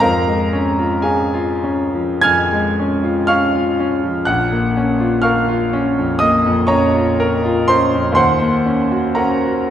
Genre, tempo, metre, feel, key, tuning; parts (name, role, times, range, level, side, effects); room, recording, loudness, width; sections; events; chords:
classical, romantic nocturne for solo piano; 46-64 BPM; 4/4; rubato; Db major; A4 = 440 Hz
clear grand piano; solo; 0.0-9.7 s; Bb1 to Ab6; -14 LUFS; equal
wet scoring stage reverb, RT60 1.8 s; heard from further back in the room; -14 LUFS; side -10 dB against mid
0.0-9.7 A section
0.0 Db/F; 4.3 Bbm; 8.2 Ebm7